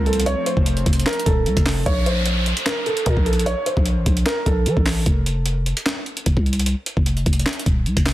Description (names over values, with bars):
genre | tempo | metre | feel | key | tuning
hip hop, trap | 150 BPM | 4/4 | half-time | Bb harmonic minor | A4 = 443 Hz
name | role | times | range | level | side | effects
felt-muted upright piano | melody | 0.0-5.0 s | A4 to Db5 | -24 LUFS | right 1 dB | low-pass filter, tape echo
airy breathy pad | sustained chords | 0.0-1.8 s | F3 to C4 | -31 LUFS | equal | chorus
growling 808-style bass | bass | 0.0-8.1 s | Eb1 to F3 | -21 LUFS | equal | none
breakbeat sampler-style drum kit | drums | 0.1-8.1 s | handclaps, hi-hat, kick drum, snare drum | -20 LUFS | equal | none
downlifter | sound effects | 1.9-5.1 s | none | -29 LUFS | right 1 dB | none
room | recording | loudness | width
little or no reverb | dense, heavily limited modern master | -17 LUFS | side -15 dB against mid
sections
0.0-1.9 A section; 1.9-8.1 B section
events
none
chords
0.0 F; 1.9 Bb5; 5.1 F5